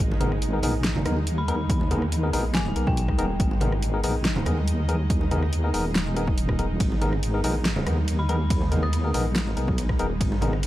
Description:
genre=deep dubstep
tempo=141 BPM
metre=4/4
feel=half-time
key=G# minor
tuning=A4 = 440 Hz
part: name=bowed-like drone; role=sustained chords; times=0.0-10.7 s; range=G#3 to D#5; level=-34 LUFS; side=equal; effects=built-in reverb
part: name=deep soft wobble bass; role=bass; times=0.0-10.7 s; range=D#1 to D#2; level=-25 LUFS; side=equal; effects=chorus
part: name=congas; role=percussion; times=0.1-10.5 s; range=none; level=-32 LUFS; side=right 2 dB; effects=none
part: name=barky tine electric piano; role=stabs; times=0.2-10.5 s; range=B3 to A#4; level=-30 LUFS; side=left 3 dB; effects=vintage 12-bit sampler grit, dub echo
part: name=deep house drum kit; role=drums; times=0.2-10.7 s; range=hi-hat, ride cymbal, rim click, snare drum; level=-30 LUFS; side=equal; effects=overdrive
part: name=dark detuned synth bell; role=melody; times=1.4-3.5, 8.2-9.1 s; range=G5 to D#6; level=-36 LUFS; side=left 2 dB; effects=chorus, dub echo
part: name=electronic kick drum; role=drums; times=1.7-10.3 s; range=none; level=-25 LUFS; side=equal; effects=overdrive
room=little or no reverb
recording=vinyl crackle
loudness=-22 LUFS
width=side -15 dB against mid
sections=0.0-10.7 A section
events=none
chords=0.0 G#madd9

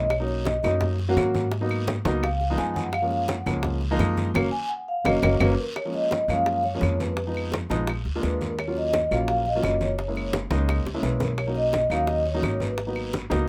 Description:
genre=Afro-Cuban jazz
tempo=170 BPM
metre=4/4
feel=straight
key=F# major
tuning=A4 = 440 Hz
part: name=vibraphone with soft mallets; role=melody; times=0.0-13.1 s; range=A#4 to G#5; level=-29 LUFS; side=equal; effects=none
part: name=warm baby grand piano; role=accompaniment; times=0.0-13.5 s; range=E#3 to F#4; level=-30 LUFS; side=equal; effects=none
part: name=upright bass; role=bass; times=0.0-13.5 s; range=F#1 to G#2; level=-30 LUFS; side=equal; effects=none
part: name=bongos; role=percussion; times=0.1-13.5 s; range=none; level=-36 LUFS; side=equal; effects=none
part: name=claves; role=percussion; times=0.1-13.1 s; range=none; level=-36 LUFS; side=equal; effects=none
part: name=congas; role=percussion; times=0.1-13.5 s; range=none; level=-34 LUFS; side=equal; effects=none
part: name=guiro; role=percussion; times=0.1-13.5 s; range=none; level=-44 LUFS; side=equal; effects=none
room=light reverb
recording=none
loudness=-25 LUFS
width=mono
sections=0.0-5.8 A section; 5.8-13.5 B section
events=vibraphone solo 0.0-5.8; band accent 4.4-5.8; drum fill 10.9-11.4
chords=0.1 Bmaj9; 1.5 G#m7; 2.2 C#7; 2.9 F#maj7; 7.2 Fm7b5; 7.9 A#7; 8.6 D#m9; 10.0 F#7; 11.4 G#m7

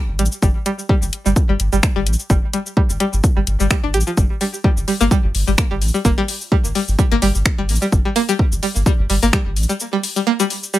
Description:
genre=minimal techno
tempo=128 BPM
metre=4/4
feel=swing 55% on 16ths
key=G minor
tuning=A4 = 440 Hz
part: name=saturated sub bass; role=bass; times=0.1-9.7 s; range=G1 to A1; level=-19 LUFS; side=equal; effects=sidechain pumping
part: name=string-like resonator pluck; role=riff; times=0.2-10.8 s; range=F3 to G4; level=-20 LUFS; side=equal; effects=chorus, sidechain pumping, tape echo
part: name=house drum kit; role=drums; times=0.2-10.8 s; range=cabasa, finger snaps, hi-hat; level=-23 LUFS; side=left 2 dB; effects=overdrive
part: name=electronic kick drum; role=drums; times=0.4-9.4 s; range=none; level=-17 LUFS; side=equal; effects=overdrive
room=light reverb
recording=none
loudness=-15 LUFS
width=side -15 dB against mid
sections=0.0-10.8 A section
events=break 9.8-10.8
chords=0.0 G5

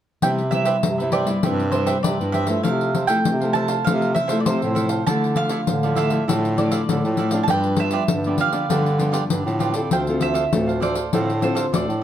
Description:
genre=samba and choro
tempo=99 BPM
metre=4/4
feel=straight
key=C major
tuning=A4 = 440 Hz
part: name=bowl-back mandolin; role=melody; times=0.2-12.0 s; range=C5 to A5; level=-24 LUFS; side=right 4 dB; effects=plate reverb
part: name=cavaquinho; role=accompaniment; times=0.2-12.0 s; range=D4 to F5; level=-28 LUFS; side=right 6 dB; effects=none
part: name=nylon-string guitar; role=accompaniment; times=0.2-12.0 s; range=G2 to A4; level=-24 LUFS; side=left 2 dB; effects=none
part: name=bright bass clarinet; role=bass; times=0.2-12.0 s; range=D2 to D3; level=-24 LUFS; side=right 1 dB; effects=none
part: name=pandeiro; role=percussion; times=0.2-12.0 s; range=none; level=-25 LUFS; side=left 4 dB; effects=none
room=moderate studio reverb, RT60 0.6 s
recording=dark, warm production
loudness=-18 LUFS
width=side -10 dB against mid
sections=0.2-12.0 A section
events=none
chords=0.2 Cmaj7; 2.6 Fmaj7/C; 5.1 Dmadd9; 7.5 G7; 9.9 Dm7

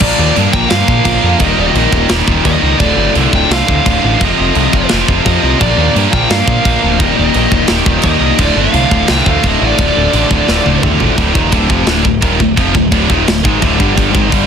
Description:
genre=heavy metal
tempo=172 BPM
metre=4/4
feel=straight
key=D phrygian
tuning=A4 = 440 Hz
part: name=dark smooth lead guitar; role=melody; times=0.0-10.8 s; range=D5 to G5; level=-17 LUFS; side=right 1 dB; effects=overdrive
part: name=heavy high-gain guitar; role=riff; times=0.0-14.5 s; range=D2 to Bb3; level=-17 LUFS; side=right 13 dB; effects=distortion
part: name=high-gain distorted guitar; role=riff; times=0.0-14.5 s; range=D2 to Bb3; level=-18 LUFS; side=left 12 dB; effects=distortion
part: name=tight distorted guitar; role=riff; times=0.0-14.5 s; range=D2 to Bb4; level=-17 LUFS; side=right 1 dB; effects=distortion
part: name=growling picked electric bass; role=bass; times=0.0-14.5 s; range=D1 to Bb2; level=-16 LUFS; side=equal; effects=overdrive
part: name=tight metal drum kit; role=drums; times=0.0-14.4 s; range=crash cymbal, kick drum, snare drum, toms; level=-15 LUFS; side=equal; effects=soft clipping on kick
room=small room ambience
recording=dense, heavily limited modern master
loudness=-9 LUFS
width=side -7 dB against mid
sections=0.0-11.2 A section; 11.2-14.5 B section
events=drum fill 10.5-11.2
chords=0.0 Bb; 1.4 Eb; 2.8 Dm; 4.2 F; 5.6 Bb; 7.0 Eb; 8.4 Dm; 14.0 G5

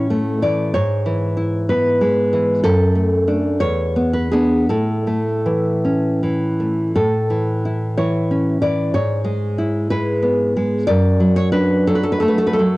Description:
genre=romantic piece for solo classical guitar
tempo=52-65 BPM (dotted quarters)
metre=6/8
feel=rubato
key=A major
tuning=A4 = 439 Hz
part: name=nylon-string guitar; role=solo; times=0.0-12.8 s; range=E2 to D5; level=-16 LUFS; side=equal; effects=none
room=light reverb, small room ambience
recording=home recording on cassette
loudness=-16 LUFS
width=side -20 dB against mid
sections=0.0-7.0 A section; 7.0-12.8 A section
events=none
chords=0.0 A; 0.7 E/G#; 2.6 D/F#; 3.6 E5; 4.7 A; 8.9 E/G#; 10.9 D/F#

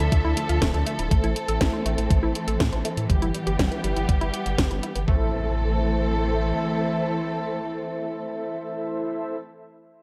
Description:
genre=italo disco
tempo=121 BPM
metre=4/4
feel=straight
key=A minor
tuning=A4 = 441 Hz
part: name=dark studio string section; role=sustained chords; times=0.0-9.4 s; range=D3 to E5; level=-31 LUFS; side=equal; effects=none
part: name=analog pluck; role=arpeggios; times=0.0-5.3 s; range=G3 to C5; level=-34 LUFS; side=equal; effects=chorus, vintage 12-bit sampler grit, tape echo
part: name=mellow synth brass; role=stabs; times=0.0-9.4 s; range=D3 to E5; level=-33 LUFS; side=equal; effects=chorus, cassette tape, tape echo
part: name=round analog bass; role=bass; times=0.0-6.5 s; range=D1 to A2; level=-28 LUFS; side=equal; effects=none
part: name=house drum kit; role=drums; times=0.0-5.1 s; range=hi-hat, snare drum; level=-31 LUFS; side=equal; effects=gated reverb
part: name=downlifter and impact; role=sound effects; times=0.2-1.1, 5.1-9.4 s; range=none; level=-39 LUFS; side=equal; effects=none
part: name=electronic kick drum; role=drums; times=0.1-5.2 s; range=none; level=-25 LUFS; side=equal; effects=none
room=light reverb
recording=none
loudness=-25 LUFS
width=mono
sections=0.0-5.1 A section; 5.1-9.0 B section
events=filter sweep on analog polysynth 0.0-5.1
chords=0.0 Dmadd9; 1.1 Am; 3.1 Em/G; 5.1 Am

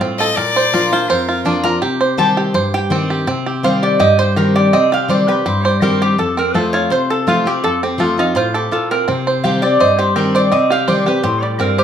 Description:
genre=bluegrass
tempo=165 BPM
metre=4/4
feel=straight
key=C dorian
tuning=A4 = 440 Hz
part: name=lap resonator guitar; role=melody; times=0.0-11.8 s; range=Eb4 to Bb5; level=-16 LUFS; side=equal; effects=none
part: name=picked steel-string acoustic guitar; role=accompaniment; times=0.0-11.8 s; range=F2 to G4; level=-17 LUFS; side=left 2 dB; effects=none
part: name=bluegrass banjo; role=arpeggios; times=0.0-11.8 s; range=G3 to C5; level=-18 LUFS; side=right 4 dB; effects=none
part: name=clear fiddle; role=second line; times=0.2-1.6 s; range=Bb4 to Eb5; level=-18 LUFS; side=left 5 dB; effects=none
room=moderate large studio reverb, RT60 0.8 s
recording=minimal, uncompressed stereo recording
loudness=-13 LUFS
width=side -8 dB against mid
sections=0.0-3.3 A section; 3.3-11.8 B section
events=resonator guitar played with a steel bar solo 0.0-3.3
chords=0.4 Bb; 1.8 Cm; 6.2 F; 9.1 Cm

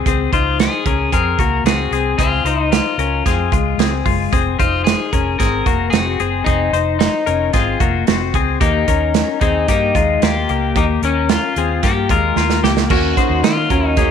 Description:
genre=jangly indie pop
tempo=112 BPM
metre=4/4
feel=straight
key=unclear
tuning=A4 = 437 Hz
part: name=twelve-string electric guitar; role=arpeggios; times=0.0-14.1 s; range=Ab3 to C5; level=-19 LUFS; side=left 13 dB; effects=harmonic tremolo
part: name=vintage muted fingered electric bass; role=bass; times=0.1-14.1 s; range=F1 to Eb3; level=-21 LUFS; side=equal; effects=none
part: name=modern studio drum kit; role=drums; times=0.1-14.1 s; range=crash cymbal, hi-hat, kick drum, snare drum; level=-18 LUFS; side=right 4 dB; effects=none
part: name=electric guitar at the edge of break-up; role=melody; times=0.3-14.1 s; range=Db4 to Bb4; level=-20 LUFS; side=left 4 dB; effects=spring reverb
part: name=picked steel-string acoustic guitar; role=accompaniment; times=12.9-14.1 s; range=Eb3 to Gb4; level=-21 LUFS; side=right 14 dB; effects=none
room=light reverb, studio ambience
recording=1960s-style stereo with parts hard left and right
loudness=-14 LUFS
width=side -7 dB against mid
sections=0.0-12.9 A section; 12.9-14.1 B section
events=drum fill 12.4-12.9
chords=0.1 Dbmaj7; 4.3 Fm7; 8.6 Eb7; 12.9 Ebm7

